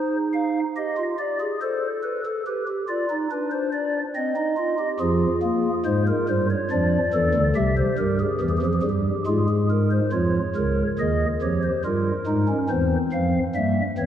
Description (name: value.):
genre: classical, baroque-style 3-part fugue for pipe organ.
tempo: 70 BPM.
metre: 3/4.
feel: straight.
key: unclear.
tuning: A4 = 440 Hz.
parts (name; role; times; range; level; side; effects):
pipe organ, stopped flute; solo; 0.0-14.1 s; C2 to F5; -21 LUFS; equal; none.
room: wet church reverb, RT60 3.2 s.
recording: dark, warm production.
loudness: -21 LUFS.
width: side -10 dB against mid.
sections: 0.0-10.1 A section; 10.1-14.1 B section.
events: none.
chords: 0.0 Cm/Eb (rootless); 1.6 Amadd9; 2.5 G; 4.1 Cm; 5.0 Fm; 6.7 Dmadd9; 7.6 C; 9.3 Fm/Ab; 10.1 Db; 11.8 Gdim; 12.7 C/E.